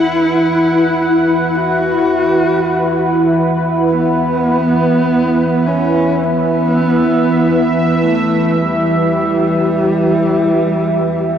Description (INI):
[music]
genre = dark ambient drone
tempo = free time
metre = none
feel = none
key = unclear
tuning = A4 = 441 Hz
[part]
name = warm horsehead fiddle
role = melody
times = 0.0-11.4 s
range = G3 to F#4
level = -16 LUFS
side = equal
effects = diffuse ambient delay
[part]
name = sweeping resonant pad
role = sustained chords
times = 0.0-11.4 s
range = E3 to F#5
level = -13 LUFS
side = equal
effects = chorus
[sound]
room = wet cathedral reverb, RT60 6.0 s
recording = dark, warm production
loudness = -12 LUFS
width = side -8 dB against mid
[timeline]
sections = 0.0-11.4 A section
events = none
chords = 0.0 Em